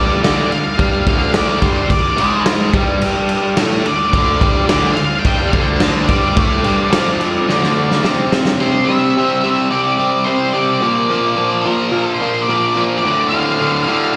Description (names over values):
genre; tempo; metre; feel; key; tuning
garage rock duo or trio; 108 BPM; 4/4; straight; D minor; A4 = 440 Hz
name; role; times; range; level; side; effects
octave-fuzz lead guitar; melody; 0.0-14.2 s; Bb4 to A5; -21 LUFS; equal; distortion
combo organ; sustained chords; 0.0-8.5 s; F4 to A5; -31 LUFS; equal; none
overdriven electric guitar; riff; 0.0-14.2 s; D2 to C4; -18 LUFS; equal; slapback echo
raw garage drum kit; drums; 0.2-8.6 s; crash cymbal, kick drum, snare drum; -19 LUFS; equal; none
room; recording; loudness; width
light reverb, small room ambience; live gig heard through the venue's PA, recital hall reverb; -15 LUFS; mono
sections
0.0-8.6 A section; 8.6-14.2 B section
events
drum fill 7.5-8.6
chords
0.0 Dm; 8.6 C; 10.8 Bb; 13.0 Dm